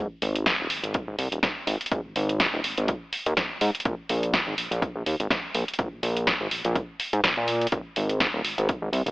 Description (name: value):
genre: filtered disco house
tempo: 124 BPM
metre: 4/4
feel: swing 56% on 16ths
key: Ab major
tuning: A4 = 442 Hz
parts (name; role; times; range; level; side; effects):
- fat analog bass; bass; 0.0-9.1 s; Eb1 to Bb2; -27 LUFS; equal; tube saturation, sidechain pumping, low-pass filter
- punchy analog drum machine; drums; 0.2-9.1 s; hi-hat, snare drum; -26 LUFS; equal; sidechain pumping on hats
- electronic kick drum; drums; 0.5-8.8 s; none; -28 LUFS; equal; none
room: light reverb, digital ambience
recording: AM radio sound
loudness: -24 LUFS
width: side -21 dB against mid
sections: 0.0-9.1 A section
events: filter sweep on analog synth bass 0.0-9.1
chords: none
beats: 0.46 0.95 1.43 | 1.92 2.40 2.88 3.37 | 3.85 4.33 4.82 5.30 | 5.79 6.27 6.75 7.24 | 7.72 8.21 8.69